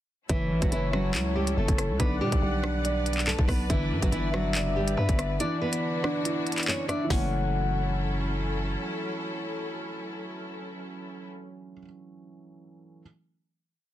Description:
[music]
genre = hip hop, drill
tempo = 141 BPM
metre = 4/4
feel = half-time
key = F# phrygian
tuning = A4 = 440 Hz
[part]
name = nylon-string guitar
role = melody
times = 0.3-8.3 s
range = E3 to D5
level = -32 LUFS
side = right 1 dB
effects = low-pass filter, ping-pong delay
[part]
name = soft octave-layered synth lead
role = second line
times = 0.3-8.3 s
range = C#5 to F#5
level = -35 LUFS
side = left 6 dB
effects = chorus, ping-pong delay
[part]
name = felt-muted upright piano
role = accompaniment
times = 0.3-13.0 s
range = D3 to D5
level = -34 LUFS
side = right 2 dB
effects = low-pass filter
[part]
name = rich symphonic string section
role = sustained chords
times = 0.3-11.3 s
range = D3 to F#5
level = -37 LUFS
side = left 2 dB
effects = none
[part]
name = growling 808-style bass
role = bass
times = 0.3-8.8 s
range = F#1 to B2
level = -29 LUFS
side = equal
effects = none
[part]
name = drill drum kit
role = drums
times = 0.3-7.2 s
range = handclaps, hi-hat, kick drum, rim click, snare drum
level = -28 LUFS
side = equal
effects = vintage 12-bit sampler grit
[sound]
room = little or no reverb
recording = dense, heavily limited modern master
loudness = -25 LUFS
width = side -13 dB against mid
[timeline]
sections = 0.3-7.1 hook; 7.1-10.5 final chord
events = kick muted 5.4-7.1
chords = 0.3 F#m7; 2.0 Bm; 3.7 G; 5.4 Dadd9; 7.1 F#m7

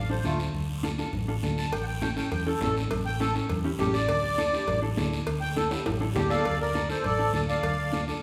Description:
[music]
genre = latin, cumbia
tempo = 203 BPM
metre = 4/4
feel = straight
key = D harmonic minor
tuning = A4 = 440 Hz
[part]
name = accordion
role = melody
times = 0.0-8.0 s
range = A3 to A5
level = -31 LUFS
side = equal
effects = light tremolo tuning
[part]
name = hollow-body short-scale fingered electric bass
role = bass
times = 0.0-8.1 s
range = A1 to E2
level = -33 LUFS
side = equal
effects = none
[part]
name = mellow electric guitar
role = accompaniment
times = 0.1-8.2 s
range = C#4 to A4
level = -36 LUFS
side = equal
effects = none
[part]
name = congas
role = percussion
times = 0.2-8.1 s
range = none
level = -38 LUFS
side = equal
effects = none
[part]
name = guiro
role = percussion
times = 0.2-8.2 s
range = none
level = -42 LUFS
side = equal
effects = none
[part]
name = cowbell and timbales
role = percussion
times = 1.7-7.8 s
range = none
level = -38 LUFS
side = equal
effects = none
[sound]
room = wet recital hall reverb, RT60 1.7 s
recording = recorded in a church or concert hall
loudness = -28 LUFS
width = mono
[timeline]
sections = 0.0-6.5 A section; 6.5-8.2 B section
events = accordion solo 0.0-6.5; drum fill 5.7-6.5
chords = 0.0 Dm; 1.7 A; 4.1 Dsus2; 6.5 Dm

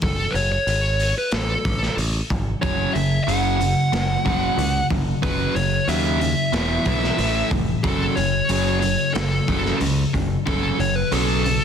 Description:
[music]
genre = hard rock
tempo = 92 BPM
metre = 4/4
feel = straight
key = F# minor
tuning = A4 = 440 Hz
[part]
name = high-gain lead guitar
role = melody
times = 0.0-11.6 s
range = A4 to F#5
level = -24 LUFS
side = left 1 dB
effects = distortion, tape echo
[part]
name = modern bright picked electric bass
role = bass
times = 0.0-11.6 s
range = E1 to D#2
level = -25 LUFS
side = equal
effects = none
[part]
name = raw garage drum kit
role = drums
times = 0.0-11.6 s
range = hi-hat, kick drum, snare drum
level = -26 LUFS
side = equal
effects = none
[part]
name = overdriven electric guitar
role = riff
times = 2.6-11.6 s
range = E2 to A3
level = -25 LUFS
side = right 14 dB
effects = none
[part]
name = sludgy distorted guitar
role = riff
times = 2.6-11.6 s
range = E2 to A3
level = -25 LUFS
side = left 12 dB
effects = overdrive
[sound]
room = light reverb, small room ambience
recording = dense, heavily limited modern master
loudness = -18 LUFS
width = side -8 dB against mid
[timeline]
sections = 0.0-11.6 A section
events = none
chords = 0.0 F#m; 1.3 N.C.; 2.6 F#5; 6.5 E5; 7.2 A5; 7.9 F#m

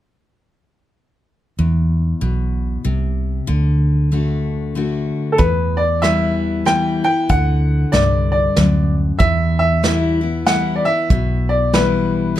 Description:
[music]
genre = honky-tonk and classic country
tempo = 95 BPM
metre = 3/4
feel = swing 61% on 8ths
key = E minor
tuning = A4 = 439 Hz
[part]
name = picked steel-string acoustic guitar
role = accompaniment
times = 1.6-12.4 s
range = E2 to F#4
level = -20 LUFS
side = left 3 dB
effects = none
[part]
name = vintage muted fingered electric bass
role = bass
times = 1.6-12.4 s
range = B1 to E2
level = -19 LUFS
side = right 1 dB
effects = none
[part]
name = bright upright piano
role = melody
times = 5.3-12.4 s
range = A4 to G5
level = -19 LUFS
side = equal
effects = none
[part]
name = soft brush drum kit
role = drums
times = 5.4-12.4 s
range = hi-hat, kick drum, rim click, snare drum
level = -19 LUFS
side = right 1 dB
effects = none
[sound]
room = moderate studio reverb, RT60 0.7 s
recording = dark, warm production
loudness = -15 LUFS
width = side -12 dB against mid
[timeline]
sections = 1.6-5.4 A section; 5.4-12.4 B section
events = none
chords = 1.6 E5; 3.5 D; 5.4 Em; 7.3 D; 9.2 Em

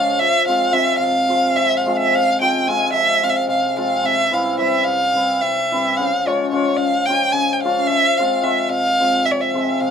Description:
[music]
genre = balkan folk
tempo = 218 BPM (eighths)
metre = 7/8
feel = straight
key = unclear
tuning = A4 = 445 Hz
[part]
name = dark violin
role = melody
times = 0.0-9.9 s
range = Db5 to Ab5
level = -17 LUFS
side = right 1 dB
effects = none
[part]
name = hammered dulcimer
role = accompaniment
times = 0.0-9.9 s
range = C3 to F4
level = -20 LUFS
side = left 3 dB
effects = none
[sound]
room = moderate small room ambience, RT60 0.5 s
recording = none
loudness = -15 LUFS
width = side -7 dB against mid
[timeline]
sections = 0.0-9.9 A section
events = none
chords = 0.2 Fm; 4.0 C; 6.0 Db; 7.9 Fm

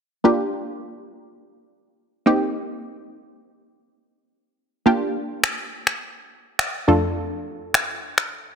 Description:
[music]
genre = dance-pop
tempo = 104 BPM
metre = 4/4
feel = straight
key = G minor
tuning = A4 = 442 Hz
[part]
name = wide unison pluck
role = accompaniment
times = 0.2-8.6 s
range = F2 to A4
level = -19 LUFS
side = equal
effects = none
[part]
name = electronic finger snaps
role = drums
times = 5.4-8.3 s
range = none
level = -21 LUFS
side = left 1 dB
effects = soft clipping on snare
[sound]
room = moderate lush hall reverb, RT60 2.3 s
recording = dense, heavily limited modern master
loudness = -20 LUFS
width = side -7 dB against mid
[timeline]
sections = 0.2-8.6 A section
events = none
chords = 0.2 Gm7; 2.3 Cm7; 4.9 Gm7; 6.9 Dm/F

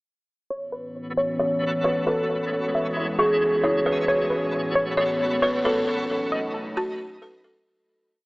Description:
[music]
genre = hip hop, atmospheric cloud-rap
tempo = 134 BPM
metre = 4/4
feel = half-time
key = A lydian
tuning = A4 = 443 Hz
[part]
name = warbly tape-like pad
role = sustained chords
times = 0.8-7.6 s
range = E2 to F#4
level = -30 LUFS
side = equal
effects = chorus, built-in reverb, low-pass filter
[part]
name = warbly dusty pluck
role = arpeggios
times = 0.5-7.7 s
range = E4 to C#6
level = -27 LUFS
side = equal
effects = chorus, low-pass filter, digital delay
[part]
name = twinkling granular texture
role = texture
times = 1.0-7.6 s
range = G#3 to C#5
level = -31 LUFS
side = equal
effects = built-in reverb
[part]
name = buzzing kalimba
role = melody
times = 1.4-7.7 s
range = F#4 to C#5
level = -24 LUFS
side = equal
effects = low-pass filter, digital delay
[sound]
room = moderate huge ambient reverb, RT60 4.7 s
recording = AM radio sound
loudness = -21 LUFS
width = side -24 dB against mid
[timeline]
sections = 0.5-7.7 breakdown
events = filter sweep 0.5-7.7; fade-out 5.9-7.7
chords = 0.5 A69; 2.3 E6; 4.1 A69; 5.9 B7

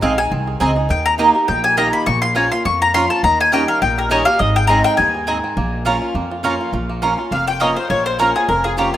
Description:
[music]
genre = bluegrass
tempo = 206 BPM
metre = 4/4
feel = swing 54% on 8ths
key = Bb dorian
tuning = A4 = 441 Hz
[part]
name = bluegrass banjo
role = melody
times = 0.0-9.0 s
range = Bb3 to Bb4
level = -25 LUFS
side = right 1 dB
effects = none
[part]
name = mandolin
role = melody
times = 0.0-9.0 s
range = F4 to Db6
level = -17 LUFS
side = left 2 dB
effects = none
[part]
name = picked swing-style acoustic guitar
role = accompaniment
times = 0.0-9.0 s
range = F2 to Ab4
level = -23 LUFS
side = equal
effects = none
[part]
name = mandolin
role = stabs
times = 0.0-8.9 s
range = Bb3 to Bb5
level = -20 LUFS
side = right 4 dB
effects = none
[part]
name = upright bass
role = bass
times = 0.0-8.9 s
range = F1 to F2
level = -22 LUFS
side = equal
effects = none
[part]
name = clear fiddle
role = second line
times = 7.3-9.0 s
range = F4 to G5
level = -25 LUFS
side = left 3 dB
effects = none
[sound]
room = moderate plate reverb, RT60 3.1 s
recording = rough home demo mix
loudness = -14 LUFS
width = side -12 dB against mid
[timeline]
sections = 0.0-6.7 A section; 6.7-9.0 B section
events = mandolin solo 0.0-6.7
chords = 0.0 Ab; 0.9 Eb; 2.1 Bbm; 3.2 Eb7; 4.4 Ab; 5.6 Bbm

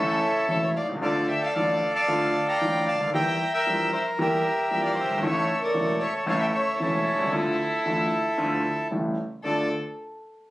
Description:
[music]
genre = tango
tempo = 114 BPM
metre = 4/4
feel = rubato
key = D minor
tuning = A4 = 440 Hz
[part]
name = bandoneon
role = melody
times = 0.0-9.7 s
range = C#4 to Bb5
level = -25 LUFS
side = right 1 dB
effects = none
[part]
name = warm violin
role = second line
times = 0.0-9.7 s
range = E4 to G5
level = -30 LUFS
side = left 1 dB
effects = none
[part]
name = warm concert grand piano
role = accompaniment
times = 0.0-9.7 s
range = E1 to G4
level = -28 LUFS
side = equal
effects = none
[sound]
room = light reverb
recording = recorded on a phone in the room, studio reverb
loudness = -22 LUFS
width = side -17 dB against mid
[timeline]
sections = 0.0-9.4 A section; 9.4-10.5 B section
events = none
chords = 0.0 A; 1.0 Dm; 3.1 Edim; 5.2 A; 7.3 Dm; 8.9 A7; 9.4 Dm

